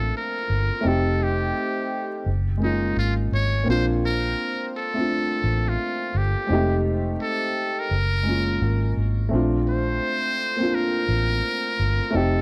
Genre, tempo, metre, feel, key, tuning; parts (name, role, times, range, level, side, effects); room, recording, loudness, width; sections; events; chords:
lo-fi hip hop; 85 BPM; 4/4; swing 62% on 16ths; Bb major; A4 = 440 Hz
trumpet with metal mute; melody; 0.0-12.4 s; Eb4 to Db5; -29 LUFS; equal; low-pass filter, tape echo
dark upright piano; accompaniment; 0.0-12.4 s; Ab3 to G4; -28 LUFS; equal; low-pass filter
vintage muted fingered electric bass; bass; 0.0-12.4 s; F1 to Bb1; -26 LUFS; equal
light reverb; vinyl crackle; -23 LUFS; mono
0.0-9.3 A section; 9.3-12.4 B section
0.0 Bbmaj7; 0.8 F7; 2.3 Gbmaj7; 3.7 Bbmaj7; 6.5 F7; 7.9 Gbmaj7; 9.3 Bbmaj7